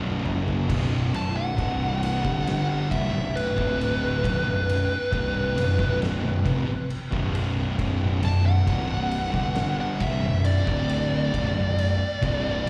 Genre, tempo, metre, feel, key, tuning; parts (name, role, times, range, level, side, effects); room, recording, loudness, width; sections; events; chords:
stoner and doom metal; 68 BPM; 4/4; straight; B minor; A4 = 439 Hz
thick fuzz guitar; riff; 0.0-12.7 s; B1 to G3; -33 LUFS; equal; distortion
thick fuzz guitar; riff; 0.0-12.7 s; B1 to G3; -30 LUFS; equal; distortion
fuzz picked electric bass; bass; 0.0-12.6 s; B0 to G1; -31 LUFS; equal; overdrive
oversized low-tuned drum kit; drums; 0.3-12.7 s; crash cymbal, kick drum, ride cymbal, snare drum, toms; -34 LUFS; equal
fuzz lead guitar; melody; 1.2-12.7 s; B4 to A5; -31 LUFS; equal; distortion, slapback echo, tape echo
studio reverb; live gig heard through the venue's PA, recital hall reverb; -25 LUFS; mono
0.7-12.7 A section
drum fill 0.0-0.7; lead electric guitar solo 0.7-12.7
0.0 B5; 0.7 Bm